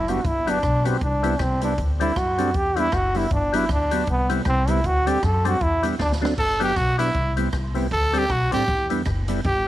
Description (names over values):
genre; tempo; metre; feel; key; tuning
ska; 156 BPM; 4/4; swing 58% on 8ths; G major; A4 = 440 Hz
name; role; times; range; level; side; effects
bright trombone; melody; 0.0-6.1 s; B3 to A4; -23 LUFS; equal; none
upright bass; bass; 0.0-9.7 s; F#1 to F#2; -25 LUFS; equal; none
mellow electric guitar; accompaniment; 0.1-9.4 s; F#3 to E4; -29 LUFS; right 5 dB; analog chorus
percussive tonewheel organ; stabs; 0.1-9.4 s; C4 to C5; -29 LUFS; left 9 dB; slow rotary speaker
swinging big-band drum kit; drums; 0.1-9.6 s; crash cymbal, hi-hat, kick drum, rim click, snare drum; -28 LUFS; right 1 dB; none
growling trumpet; melody; 6.4-9.7 s; E4 to A4; -22 LUFS; right 1 dB; none
room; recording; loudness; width
light reverb, small room ambience; 1960s-style stereo, vinyl crackle; -19 LUFS; side -14 dB against mid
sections
0.0-6.4 A section; 6.4-9.7 A section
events
trombone solo 0.0-6.4; drum fill 6.0-6.4; trumpet solo 6.4-9.7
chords
0.2 Gmaj7; 1.0 Cmaj7; 1.8 D7sus4; 2.5 Em7; 3.3 Gmaj7; 4.1 Cmaj7; 4.8 D7sus4; 5.6 Em7; 6.0 D7; 6.4 Gmaj7; 7.1 Cmaj7; 7.9 D7sus4; 8.7 Em7